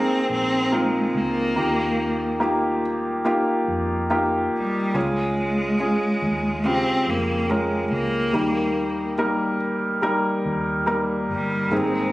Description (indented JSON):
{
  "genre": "pop",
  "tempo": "71 BPM",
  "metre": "4/4",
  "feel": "straight",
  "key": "unclear",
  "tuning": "A4 = 439 Hz",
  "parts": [
    { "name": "clear cello", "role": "melody", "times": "0.0-12.1 s", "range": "G3 to C4", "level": "-24 LUFS", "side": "equal", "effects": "none" },
    { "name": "clear grand piano", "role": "accompaniment", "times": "0.0-12.1 s", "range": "Ab2 to Bb4", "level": "-22 LUFS", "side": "equal", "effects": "none" },
    { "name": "vintage muted fingered electric bass", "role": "bass", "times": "0.0-12.1 s", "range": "G1 to F2", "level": "-33 LUFS", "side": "equal", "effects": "none" },
    { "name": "mellow tonewheel organ", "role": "sustained chords", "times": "11.7-12.1 s", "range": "Ab4 to Bb5", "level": "-28 LUFS", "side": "equal", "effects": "chorus vibrato, fast rotary speaker" }
  ],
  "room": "moderate lush hall reverb, RT60 2.5 s",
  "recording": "recorded on a phone in the room, studio reverb",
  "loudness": "-20 LUFS",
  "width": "side -17 dB against mid",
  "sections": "0.0-12.1 A section",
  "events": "none",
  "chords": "0.0 Abadd9; 1.6 Ebadd9; 5.0 Db; 8.3 Eb"
}